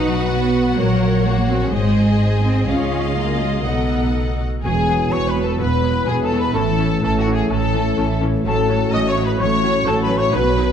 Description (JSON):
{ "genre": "cinematic", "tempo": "126 BPM", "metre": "4/4", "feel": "straight", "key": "E major from 4.6 s", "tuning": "A4 = 440 Hz", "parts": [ { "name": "rich symphonic violin section", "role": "melody", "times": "0.0-10.7 s", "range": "F#4 to Gb5", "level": "-28 LUFS", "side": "left 5 dB", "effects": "none" }, { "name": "rich symphonic violin section", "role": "second line", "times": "0.0-10.7 s", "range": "Eb4 to D#5", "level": "-28 LUFS", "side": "left 3 dB", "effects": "none" }, { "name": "clear symphonic viola section", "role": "accompaniment", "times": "0.0-10.6 s", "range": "E3 to Eb5", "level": "-28 LUFS", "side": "right 1 dB", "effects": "none" }, { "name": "mellow French horn section", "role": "sustained chords", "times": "0.0-10.7 s", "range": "Gb3 to Eb5", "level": "-26 LUFS", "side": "left 3 dB", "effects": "none" }, { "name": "concert harp", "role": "arpeggios", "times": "0.0-10.7 s", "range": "Ab2 to E5", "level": "-26 LUFS", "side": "left 7 dB", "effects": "none" }, { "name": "dark symphonic cello section", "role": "bass", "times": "0.0-10.7 s", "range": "E2 to Eb4", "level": "-23 LUFS", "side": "right 2 dB", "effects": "none" }, { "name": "rich symphonic double bass section", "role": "bass", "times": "0.0-10.7 s", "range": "E1 to Db2", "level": "-21 LUFS", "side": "right 2 dB", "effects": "none" }, { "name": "bright silver concert flute", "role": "second line", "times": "4.6-10.7 s", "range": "F#5 to D#6", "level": "-25 LUFS", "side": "left 3 dB", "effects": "none" }, { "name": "clear trombone section", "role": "sustained chords", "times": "4.6-10.7 s", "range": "D#3 to A3", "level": "-26 LUFS", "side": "right 3 dB", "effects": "none" }, { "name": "mellow trumpet section", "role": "stabs", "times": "4.6-10.7 s", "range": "F#4 to D#5", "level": "-26 LUFS", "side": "equal", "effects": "none" } ], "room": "wet scoring stage reverb, RT60 1.7 s", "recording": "dark, warm production", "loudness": "-16 LUFS", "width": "side -8 dB against mid", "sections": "0.0-4.6 A section; 4.6-10.7 B section", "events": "none", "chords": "0.0 Cb; 0.8 Gb/Bb; 1.7 Ab; 2.7 Dbadd9; 3.7 Cb7; 4.6 Eadd9; 6.5 A; 8.5 F#m/A" }